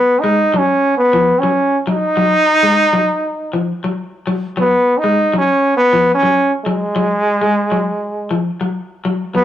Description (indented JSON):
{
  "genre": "afrobeat",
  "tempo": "100 BPM",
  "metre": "4/4",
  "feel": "swing 53% on 16ths",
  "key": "G# dorian",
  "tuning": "A4 = 438 Hz",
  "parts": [
    { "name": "brilliant trombone", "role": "melody", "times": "0.0-9.4 s", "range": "G#3 to D#4", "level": "-13 LUFS", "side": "equal", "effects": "none" },
    { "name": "electric guitar at the edge of break-up", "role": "arpeggios", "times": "0.2-9.4 s", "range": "E#3 to G#3", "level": "-19 LUFS", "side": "left 2 dB", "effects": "spring reverb" }
  ],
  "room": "wet studio reverb, RT60 0.5 s",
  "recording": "rough rehearsal-room recording, warm saturation",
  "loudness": "-13 LUFS",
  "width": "side -11 dB against mid",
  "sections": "0.0-9.4 A section",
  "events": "none",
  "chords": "0.0 G#7(no3) (rootless)",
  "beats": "0.37 0.97 1.57 | 2.17 2.77 3.37 3.97 | 4.57 5.17 5.76 6.36 | 6.96 7.56 8.15 8.75 | 9.35"
}